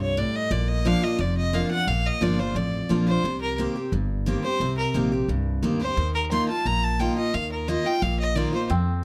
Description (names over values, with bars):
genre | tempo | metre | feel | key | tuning
bluegrass | 176 BPM | 4/4 | straight | unclear | A4 = 439 Hz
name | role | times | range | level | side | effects
clear fiddle | melody | 0.0-8.7 s | Bb4 to C6 | -30 LUFS | equal | none
picked steel-string acoustic guitar | accompaniment | 0.0-9.0 s | F2 to G4 | -28 LUFS | equal | none
upright bass | bass | 0.0-9.0 s | F1 to F2 | -30 LUFS | equal | none
bluegrass banjo | melody | 8.7-9.0 s | C4 | -32 LUFS | equal | none
room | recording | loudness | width
light reverb | close, detailed microphones | -24 LUFS | mono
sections
0.0-9.0 A section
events
none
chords
0.0 N.C.; 0.5 Bb; 3.2 Cm7; 6.0 Ebsus2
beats
0.17 | 0.52 0.86 1.20 1.54 | 1.88 2.22 2.56 2.90 | 3.24 3.58 3.93 4.27 | 4.61 4.95 5.29 5.63 | 5.97 6.31 6.66 7.00 | 7.34 7.68 8.02 8.36 | 8.70